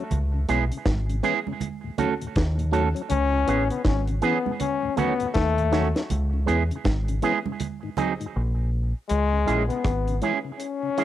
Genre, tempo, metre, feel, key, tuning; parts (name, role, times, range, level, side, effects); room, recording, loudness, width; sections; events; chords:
roots reggae; 80 BPM; 4/4; swing 62% on 16ths; C# minor; A4 = 440 Hz
mellow tonewheel organ; accompaniment; 0.0-11.0 s; D#2 to C#4; -33 LUFS; left 6 dB; slow rotary speaker, cassette tape
deep dub fingered electric bass; bass; 0.1-10.2 s; G#1 to E2; -24 LUFS; equal; transformer saturation
deep reggae drum kit; drums; 0.1-11.0 s; hi-hat, kick drum, rim click, snare drum; -27 LUFS; equal; cassette tape
congas; percussion; 0.1-8.2 s; -32 LUFS; right 6 dB
electric guitar with an envelope filter; accompaniment; 0.5-11.0 s; D#3 to A4; -26 LUFS; right 7 dB; cassette tape, tape echo
clear trombone; second line; 3.1-11.0 s; G#3 to C#4; -26 LUFS; left 6 dB; cassette tape, tape echo
moderate small room reverb, RT60 0.5 s; home recording on cassette; -22 LUFS; side -12 dB against mid
0.0-9.1 A section; 9.1-11.0 B section
drums muted 8.3-9.1
0.1 C#m7; 1.6 D#m7b5; 3.1 C#m7; 4.6 D#m7b5; 6.1 C#m7; 7.6 G#7; 9.1 C#m